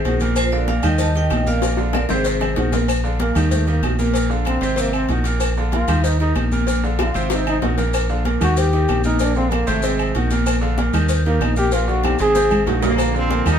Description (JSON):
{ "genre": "latin, salsa", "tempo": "190 BPM", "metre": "4/4", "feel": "straight", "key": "Bb major", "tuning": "A4 = 440 Hz", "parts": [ { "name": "vibraphone with hard mallets", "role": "melody", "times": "0.0-2.7 s", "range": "F4 to A5", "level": "-24 LUFS", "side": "equal", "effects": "none" }, { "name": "fingered electric bass", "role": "bass", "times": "0.0-13.6 s", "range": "Ab1 to Eb2", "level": "-20 LUFS", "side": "equal", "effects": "none" }, { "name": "maracas", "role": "percussion", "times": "0.0-13.6 s", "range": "none", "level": "-34 LUFS", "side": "left 4 dB", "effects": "none" }, { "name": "bright concert grand piano", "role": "accompaniment", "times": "0.1-13.6 s", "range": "Bb2 to C5", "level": "-24 LUFS", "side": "right 2 dB", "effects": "none" }, { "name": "agogo bells and timbales", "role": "percussion", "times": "0.1-13.6 s", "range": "none", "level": "-28 LUFS", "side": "right 4 dB", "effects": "none" }, { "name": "congas", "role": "percussion", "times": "0.1-13.6 s", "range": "none", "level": "-28 LUFS", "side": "left 2 dB", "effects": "none" }, { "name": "cowbell and bongos", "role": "percussion", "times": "0.1-13.6 s", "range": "none", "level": "-27 LUFS", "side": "left 6 dB", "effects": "none" }, { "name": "claves", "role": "percussion", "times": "0.4-13.6 s", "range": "none", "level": "-37 LUFS", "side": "left 4 dB", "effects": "none" }, { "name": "warm trombone", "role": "melody", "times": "3.2-12.6 s", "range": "Ab3 to Ab4", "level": "-22 LUFS", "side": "left 1 dB", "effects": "none" }, { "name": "brilliant trombone section", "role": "melody", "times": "12.8-13.6 s", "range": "D3 to Eb4", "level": "-22 LUFS", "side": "right 1 dB", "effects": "none" } ], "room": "moderate stone room reverb, RT60 1.1 s", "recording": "band playing live in one room", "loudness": "-16 LUFS", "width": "side -8 dB against mid", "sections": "0.0-2.9 A section; 2.9-13.0 B section", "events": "drum fill 1.6-2.9, 7.0-7.9, 12.0-13.0; trombone solo 2.9-13.0", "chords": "0.4 Bb; 1.0 Eb; 1.6 Bbadd9; 2.3 Ab7; 2.9 Bb; 3.5 Eb; 4.2 Bbadd9; 4.8 Ab7; 5.4 Bb; 6.0 Eb; 6.7 Bbadd9; 7.3 Ab7; 7.9 Bb; 8.6 Eb; 9.2 Bbadd9; 9.8 Ab7; 10.5 Bb; 11.1 Eb; 11.7 Bbadd9; 12.4 Ab7; 13.0 Bbadd9" }